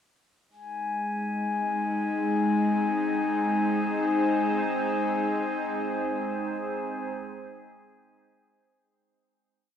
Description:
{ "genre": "ambient", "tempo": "free time", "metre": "none", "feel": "none", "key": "Ab major", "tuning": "A4 = 440 Hz", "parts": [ { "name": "evolving wavetable pad", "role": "sustained chords", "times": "1.6-8.8 s", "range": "Ab3 to C5", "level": "-32 LUFS", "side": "right 2 dB", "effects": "chorus, built-in reverb" }, { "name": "bowed-like drone", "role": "drone", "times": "0.9-8.9 s", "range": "Ab3 to Eb4", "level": "-28 LUFS", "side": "left 2 dB", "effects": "built-in reverb" }, { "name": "glass harmonica", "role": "texture", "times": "0.5-8.8 s", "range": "Ab5", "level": "-30 LUFS", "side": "left 4 dB", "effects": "none" } ], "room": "wet scoring stage reverb, RT60 1.9 s", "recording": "dark, warm production", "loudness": "-25 LUFS", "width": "side -8 dB against mid", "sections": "0.5-8.8 A section", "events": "fade-in on ambient pad 0.5-8.8; fade-out 4.6-8.8", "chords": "0.5 Ab" }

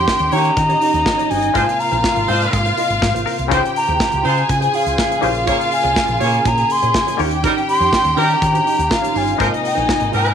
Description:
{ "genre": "disco", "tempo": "122 BPM", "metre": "4/4", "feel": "straight", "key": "Ab major", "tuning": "A4 = 437 Hz", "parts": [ { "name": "bright alto flute", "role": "melody", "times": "0.0-10.3 s", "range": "F5 to C6", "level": "-18 LUFS", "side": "left 1 dB", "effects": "none" }, { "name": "dark studio string section", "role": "second line", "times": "0.0-10.3 s", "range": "Eb4 to Ab5", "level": "-21 LUFS", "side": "left 2 dB", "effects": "none" }, { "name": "mellow electric guitar", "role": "accompaniment", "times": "0.0-10.3 s", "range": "Eb4 to Eb5", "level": "-27 LUFS", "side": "right 14 dB", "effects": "none" }, { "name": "muted clav", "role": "accompaniment", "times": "0.0-10.3 s", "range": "Bb2 to F5", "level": "-23 LUFS", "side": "left 13 dB", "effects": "none" }, { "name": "percussive tonewheel organ", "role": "sustained chords", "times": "0.0-10.3 s", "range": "C3 to C5", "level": "-28 LUFS", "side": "right 1 dB", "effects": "chorus vibrato, slow rotary speaker" }, { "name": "fingered electric bass", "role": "bass", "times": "0.0-10.3 s", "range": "G1 to Eb3", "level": "-22 LUFS", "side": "equal", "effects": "none" }, { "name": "modern studio drum kit", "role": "drums", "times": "0.1-10.3 s", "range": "hi-hat, kick drum, snare drum", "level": "-23 LUFS", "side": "right 1 dB", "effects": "none" }, { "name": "clear horn section", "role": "stabs", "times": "0.3-10.3 s", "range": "F3 to Db5", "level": "-21 LUFS", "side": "right 1 dB", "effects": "slapback echo" } ], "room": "moderate plate reverb, RT60 1.4 s, small room ambience", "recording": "1960s-style stereo with parts hard left and right", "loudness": "-14 LUFS", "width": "side -8 dB against mid", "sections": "0.0-10.3 A section", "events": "clav fill 2.8-3.5", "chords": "0.0 Eb7; 1.6 Ab69; 3.5 Dbmaj7; 5.2 Bbm7; 7.2 Eb7; 9.4 Ab69" }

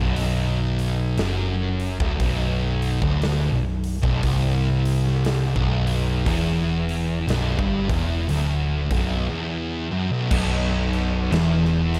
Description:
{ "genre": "stoner and doom metal", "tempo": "59 BPM", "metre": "4/4", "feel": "swing 61% on 8ths", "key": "B minor", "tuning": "A4 = 439 Hz", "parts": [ { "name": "thick fuzz guitar", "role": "riff", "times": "0.0-12.0 s", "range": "B1 to G2", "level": "-27 LUFS", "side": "equal", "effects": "distortion" }, { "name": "thick fuzz guitar", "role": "riff", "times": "0.0-12.0 s", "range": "B1 to G2", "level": "-28 LUFS", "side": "equal", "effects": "distortion" }, { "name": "hollow-body short-scale picked electric bass", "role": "bass", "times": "0.0-12.0 s", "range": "B0 to G1", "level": "-28 LUFS", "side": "equal", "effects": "overdrive" }, { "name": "big rock drum kit", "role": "drums", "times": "0.2-12.0 s", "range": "crash cymbal, hi-hat, kick drum, snare drum", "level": "-31 LUFS", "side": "equal", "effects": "none" }, { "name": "fuzz guitar", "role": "riff", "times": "10.3-12.0 s", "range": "B1 to E2", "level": "-30 LUFS", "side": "equal", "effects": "none" } ], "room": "studio ambience", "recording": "dark, warm production", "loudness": "-23 LUFS", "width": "mono", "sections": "0.0-10.3 A section; 10.3-12.0 B section", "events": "none", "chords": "0.0 Bm; 10.3 N.C." }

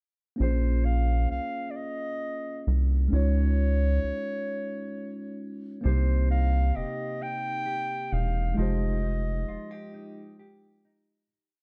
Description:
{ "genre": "slow six-eight R&B", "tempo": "44 BPM (dotted quarters)", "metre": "6/8", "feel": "straight", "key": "F minor", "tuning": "A4 = 441 Hz", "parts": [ { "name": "mellow clarinet", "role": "melody", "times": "0.4-10.4 s", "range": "C5 to G5", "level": "-36 LUFS", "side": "equal", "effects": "none" }, { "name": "mellow tine electric piano", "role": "accompaniment", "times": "0.4-11.3 s", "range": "Ab3 to Db5", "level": "-37 LUFS", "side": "equal", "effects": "none" }, { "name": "rubbery square bass", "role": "bass", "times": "0.4-9.6 s", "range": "E1 to Db2", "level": "-26 LUFS", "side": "equal", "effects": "none" }, { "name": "mellow electric guitar", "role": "second line", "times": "5.8-11.6 s", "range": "C3 to G4", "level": "-41 LUFS", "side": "equal", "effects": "none" } ], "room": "little or no reverb", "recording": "dark, warm production", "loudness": "-27 LUFS", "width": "mono", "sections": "0.4-11.3 verse", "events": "fade-out 8.6-11.3", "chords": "0.4 Bbm9; 3.1 Dbadd9; 5.8 Cm7; 8.6 Fm9" }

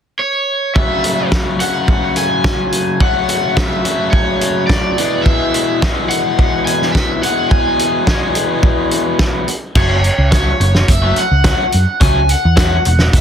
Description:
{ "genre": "indie rock", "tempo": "107 BPM", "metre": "4/4", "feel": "straight", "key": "F# minor", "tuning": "A4 = 440 Hz", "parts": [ { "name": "cranked stack guitar", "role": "melody", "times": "0.2-13.2 s", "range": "C#5 to G#5", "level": "-18 LUFS", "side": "equal", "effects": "overdrive, slapback echo" }, { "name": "overdriven electric guitar", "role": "riff", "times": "0.8-12.9 s", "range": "E2 to G#4", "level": "-18 LUFS", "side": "left 2 dB", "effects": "none" }, { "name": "loose indie drum kit", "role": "drums", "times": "0.8-13.2 s", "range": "crash cymbal, hi-hat, kick drum, snare drum", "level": "-15 LUFS", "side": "equal", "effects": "none" }, { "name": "hollow-body short-scale picked electric bass", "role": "bass", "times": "9.8-13.2 s", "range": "E1 to F#2", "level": "-13 LUFS", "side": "equal", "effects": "none" } ], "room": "light reverb", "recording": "dense, heavily limited modern master", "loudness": "-12 LUFS", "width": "side -8 dB against mid", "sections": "0.8-9.8 A section; 9.8-13.2 B section", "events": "none", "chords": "0.0 N.C.; 0.8 F#m7; 5.0 E; 9.8 F#m7" }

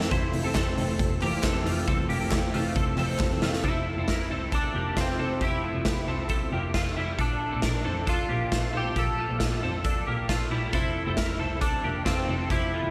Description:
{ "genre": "jangly indie pop", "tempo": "135 BPM", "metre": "4/4", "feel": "straight", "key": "F major", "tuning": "A4 = 440 Hz", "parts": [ { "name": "fingerpicked steel-string acoustic guitar", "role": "accompaniment", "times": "0.0-3.7 s", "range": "F2 to A4", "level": "-35 LUFS", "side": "equal", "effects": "lush chorus" }, { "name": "twelve-string electric guitar", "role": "arpeggios", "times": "0.0-12.9 s", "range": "F3 to C5", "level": "-34 LUFS", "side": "equal", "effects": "ensemble chorus, diffuse ambient delay" }, { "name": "warm double bass", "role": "bass", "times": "0.0-12.9 s", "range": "F1 to F2", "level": "-33 LUFS", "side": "equal", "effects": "none" }, { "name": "raw garage drum kit", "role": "drums", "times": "0.0-12.6 s", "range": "hi-hat, kick drum, snare drum", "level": "-32 LUFS", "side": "equal", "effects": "none" }, { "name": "group handclap", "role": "percussion", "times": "0.5-3.3 s", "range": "none", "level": "-46 LUFS", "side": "equal", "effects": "none" }, { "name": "electric guitar at the edge of break-up", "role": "melody", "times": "3.6-12.9 s", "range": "C4 to A4", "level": "-34 LUFS", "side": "equal", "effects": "analog chorus" } ], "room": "moderate cathedral reverb, RT60 5.4 s", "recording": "dreamy mix soaked in reverb", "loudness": "-27 LUFS", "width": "mono", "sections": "0.1-3.6 A section; 3.6-12.9 B section", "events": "drum fill 3.2-3.6", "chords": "0.1 Fmaj7; 7.2 Bbmaj7; 10.7 Fmaj7" }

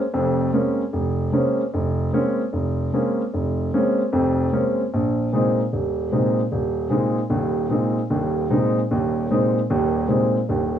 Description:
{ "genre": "jazz", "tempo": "151 BPM", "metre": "4/4", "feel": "swing 65% on 8ths", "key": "unclear", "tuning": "A4 = 440 Hz", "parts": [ { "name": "warm grand piano", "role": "solo", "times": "0.1-10.8 s", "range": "Eb1 to Eb4", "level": "-19 LUFS", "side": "equal", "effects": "cassette tape" } ], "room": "wet booth ambience, RT60 0.2 s", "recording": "home recording on cassette", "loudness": "-19 LUFS", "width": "side -9 dB against mid", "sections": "0.0-10.8 A section", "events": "none", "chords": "0.0 Bbm9; 4.9 Ab" }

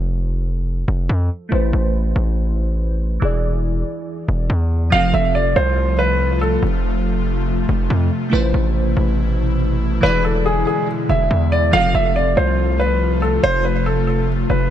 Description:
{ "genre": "hip hop", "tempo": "141 BPM", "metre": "4/4", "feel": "half-time", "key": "unclear", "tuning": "A4 = 441 Hz", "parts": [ { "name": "glassy digital keys", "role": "accompaniment", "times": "0.0-14.7 s", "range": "E3 to D5", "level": "-25 LUFS", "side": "right 1 dB", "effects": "chorus, low-pass filter" }, { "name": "distorted 808-style bass", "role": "bass", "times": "0.0-14.7 s", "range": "E1 to F2", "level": "-18 LUFS", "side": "equal", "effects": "distortion" }, { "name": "warm upright piano", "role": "melody", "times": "4.9-6.6, 10.0-14.7 s", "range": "G#4 to F5", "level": "-18 LUFS", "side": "right 1 dB", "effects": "low-pass filter, digital delay" }, { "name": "airy breathy pad", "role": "sustained chords", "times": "5.3-14.7 s", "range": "B2 to F4", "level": "-23 LUFS", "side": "left 1 dB", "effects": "chorus" } ], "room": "little or no reverb", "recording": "none", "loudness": "-16 LUFS", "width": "side -11 dB against mid", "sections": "0.0-14.7 A section", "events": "break 0.0-4.9; filter sweep 0.0-4.9", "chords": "0.0 F; 1.5 Amadd9; 3.2 E7; 4.9 F; 8.3 Amadd9; 10.0 E7; 11.7 F" }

